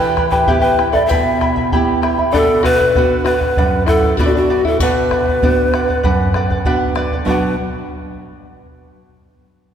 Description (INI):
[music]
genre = andean folk, Andean ensemble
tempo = 98 BPM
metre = 4/4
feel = straight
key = B minor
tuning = A4 = 442 Hz
[part]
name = breathy mellow large pan pipes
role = melody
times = 0.0-7.5 s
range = E4 to E5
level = -17 LUFS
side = left 1 dB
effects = none
[part]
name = open-back banjo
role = second line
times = 0.0-7.5 s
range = B3 to B4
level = -22 LUFS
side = left 4 dB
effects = none
[part]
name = charango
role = accompaniment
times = 0.0-7.5 s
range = E4 to B5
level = -20 LUFS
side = right 1 dB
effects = none
[part]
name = nylon-string guitar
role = accompaniment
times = 0.0-7.6 s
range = F#2 to E5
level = -20 LUFS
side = right 2 dB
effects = none
[part]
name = bombo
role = percussion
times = 0.2-7.6 s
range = none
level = -19 LUFS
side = equal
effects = none
[sound]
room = wet church reverb, RT60 2.8 s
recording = recorded in a church or concert hall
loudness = -12 LUFS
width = side -8 dB against mid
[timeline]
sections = 0.0-7.3 A section; 7.3-9.7 B section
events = nylon-string guitar fill 6.3-7.3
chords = 0.0 Em; 2.3 Bm